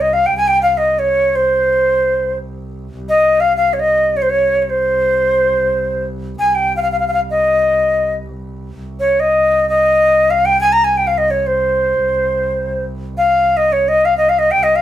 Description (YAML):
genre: Turkish makam ensemble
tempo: free time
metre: none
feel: none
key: C makam kurdi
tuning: A4 = 440 Hz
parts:
  - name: breathy bright jazz flute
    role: melody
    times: 0.0-14.8 s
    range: C5 to Bb5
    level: -12 LUFS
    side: equal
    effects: none
  - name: clear double bass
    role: drone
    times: 0.0-14.8 s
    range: C2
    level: -27 LUFS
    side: right 2 dB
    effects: none
room: moderate studio reverb, RT60 0.6 s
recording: band playing live in one room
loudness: -12 LUFS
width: side -12 dB against mid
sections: 0.0-14.8 A section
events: none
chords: none